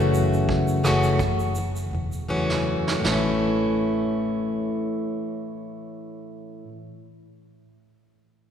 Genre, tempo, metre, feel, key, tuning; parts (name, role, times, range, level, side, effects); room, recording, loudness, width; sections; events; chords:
acoustic pop; 78-88 BPM; 4/4; swing 55% on 16ths; A major; A4 = 442 Hz
picked plugged-in acoustic archtop guitar; accompaniment; 0.0-6.8 s; F#2 to F#4; -23 LUFS; left 1 dB
vintage muted fingered electric bass; bass; 0.0-6.6 s; E1 to A1; -29 LUFS; equal
vintage brush drum kit; drums; 0.1-3.2 s; kick drum, rim click, shaker, snare drum; -31 LUFS; right 3 dB
wet church reverb, RT60 2.7 s; recorded in a church or concert hall; -21 LUFS; side -8 dB against mid
0.0-3.0 A section; 3.0-6.1 B section
slowing down 0.0-3.0; drum fill 2.3-3.0
0.0 F#m7; 3.0 A